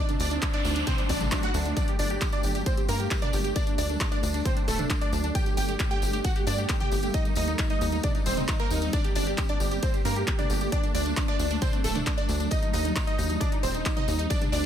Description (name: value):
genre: uplifting trance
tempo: 134 BPM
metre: 4/4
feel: straight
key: G harmonic minor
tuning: A4 = 441 Hz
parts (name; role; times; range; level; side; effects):
- wide unison pluck; melody; 0.0-14.7 s; A3 to G5; -31 LUFS; right 2 dB; phaser, vintage 12-bit sampler grit, sidechain pumping, digital delay
- clear concert grand piano; second line; 0.0-14.6 s; D4 to G5; -35 LUFS; equal; sidechain pumping, digital delay
- shimmering ambient pad; sustained chords; 0.0-14.7 s; Eb3 to Eb4; -34 LUFS; equal; chorus, built-in reverb, sidechain pumping
- noise sweep; sound effects; 0.3-1.8 s; none; -37 LUFS; right 3 dB; none
- punchy analog drum machine; drums; 0.1-14.6 s; handclaps, hi-hat, toms; -34 LUFS; left 1 dB; overdrive
- tambourine; percussion; 0.1-14.7 s; none; -40 LUFS; left 5 dB; none
- tight sequencer bass; bass; 0.2-14.7 s; D1 to G2; -30 LUFS; equal; sidechain pumping
- electronic kick drum; drums; 0.4-14.4 s; none; -28 LUFS; equal; none
room: little or no reverb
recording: none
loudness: -24 LUFS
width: side -9 dB against mid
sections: 0.0-14.7 A section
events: noise sweep 0.3-1.8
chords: 0.0 D; 1.8 Gmadd9; 3.6 D; 5.3 Gmadd9; 7.1 Eb6; 8.9 Gmadd9; 10.7 D; 12.5 Eb6